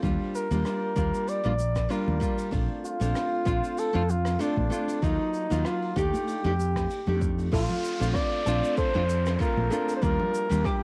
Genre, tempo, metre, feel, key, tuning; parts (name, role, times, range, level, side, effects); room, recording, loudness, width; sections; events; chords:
sunset chillout; 96 BPM; 4/4; swing 54% on 16ths; Bb major; A4 = 440 Hz
trumpet with bucket mute; melody; 0.0-10.8 s; D4 to D5; -32 LUFS; equal; cassette tape, tape echo
nylon-string guitar; accompaniment; 0.0-10.8 s; Gb3 to G4; -33 LUFS; equal; cassette tape
mellow fretless electric bass; bass; 0.0-10.6 s; Bb1 to F2; -30 LUFS; equal
electronic kick drum; drums; 0.0-10.8 s; -33 LUFS; equal; cassette tape
jazz brush drum kit; drums; 0.0-10.8 s; hi-hat, rim click, shaker; -45 LUFS; equal; cassette tape
congas; percussion; 0.5-10.6 s; -40 LUFS; equal
steel pan; arpeggios; 7.5-10.8 s; A4 to D6; -40 LUFS; equal; cassette tape, tape echo
downlifter; sound effects; 7.5-10.8 s; -41 LUFS; equal
moderate booth ambience, RT60 0.3 s; home recording on cassette; -27 LUFS; mono
0.0-7.5 A section; 7.5-10.8 B section
0.0 Ebmaj7; 2.5 Bbmaj9; 5.0 Ebmadd9; 6.3 F13; 7.5 Bbmaj9; 10.0 Ebmaj7